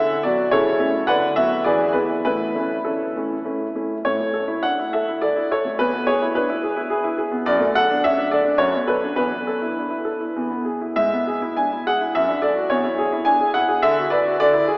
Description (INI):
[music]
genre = classical-period piano sonatina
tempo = 104 BPM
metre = 3/4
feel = rubato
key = A major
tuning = A4 = 440 Hz
[part]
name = clear concert grand piano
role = solo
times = 0.0-14.8 s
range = E2 to G#5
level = -18 LUFS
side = equal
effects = none
[sound]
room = wet church reverb, RT60 3.9 s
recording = AM radio sound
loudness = -18 LUFS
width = side -26 dB against mid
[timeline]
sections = 0.0-4.0 A section; 4.0-14.8 B section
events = none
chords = 0.0 Bm/D; 0.5 A/C#; 1.1 Bm/D; 1.7 E7; 2.2 A; 5.8 E; 7.5 D/F#; 8.6 Bm7/F#; 9.2 Esus4; 10.3 E; 10.9 E/G#; 12.1 D/F#; 12.7 C#m/E; 13.8 Bm/D